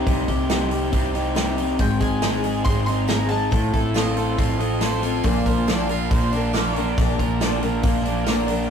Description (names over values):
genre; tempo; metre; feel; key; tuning
folk rock and heartland rock; 139 BPM; 4/4; straight; unclear; A4 = 439 Hz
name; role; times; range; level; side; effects
clear harmonica; second line; 0.0-0.1, 4.0-7.0 s; C5 to F5; -31 LUFS; right 6 dB; none
picked steel-string acoustic guitar; accompaniment; 0.0-8.7 s; Ab2 to Bb4; -26 LUFS; left 2 dB; none
crunchy overdriven guitar; riff; 0.0-8.7 s; Ab2 to Bb4; -24 LUFS; equal; none
hollow-body short-scale fingered electric bass; bass; 0.0-8.7 s; Ab1 to C2; -26 LUFS; equal; none
natural country drum kit; drums; 0.1-8.6 s; hi-hat, kick drum, snare drum; -24 LUFS; right 1 dB; none
mandolin; melody; 1.8-4.1 s; G5 to C6; -29 LUFS; left 2 dB; none
tambourine; percussion; 2.2-8.4 s; none; -42 LUFS; right 6 dB; none
room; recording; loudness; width
moderate small room reverb, RT60 0.5 s; rough rehearsal-room recording, warm saturation; -19 LUFS; side -7 dB against mid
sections
0.0-8.7 A section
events
none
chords
0.0 Cm; 1.8 Ab; 3.5 F/A; 5.3 Bb